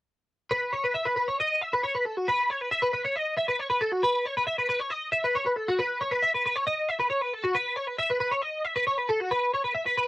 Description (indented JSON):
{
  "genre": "rock",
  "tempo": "136 BPM",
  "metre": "4/4",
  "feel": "straight",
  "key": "unclear",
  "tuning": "A4 = 438 Hz",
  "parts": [
    { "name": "twelve-string electric guitar", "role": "solo", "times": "0.5-10.1 s", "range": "F#4 to E5", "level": "-24 LUFS", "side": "equal", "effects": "ensemble chorus, cassette tape" }
  ],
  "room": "light reverb",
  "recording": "home recording on cassette",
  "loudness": "-24 LUFS",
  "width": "side -18 dB against mid",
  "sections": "0.5-10.1 A section",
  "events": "none",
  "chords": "none"
}